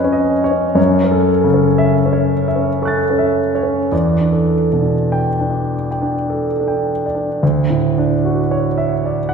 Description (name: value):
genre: classical, impressionist solo piano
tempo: 50-64 BPM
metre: 3/4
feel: rubato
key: D major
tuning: A4 = 440 Hz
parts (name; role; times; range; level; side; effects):
- warm concert grand piano; solo; 0.0-9.3 s; D2 to A6; -14 LUFS; equal; none
room: wet concert hall reverb, RT60 1.7 s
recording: heard from further back in the room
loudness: -14 LUFS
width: side -6 dB against mid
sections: 0.0-7.4 A section; 7.4-9.3 B section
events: none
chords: 0.0 Db9/F; 0.8 F#m7; 3.9 Em7; 7.4 Dmaj9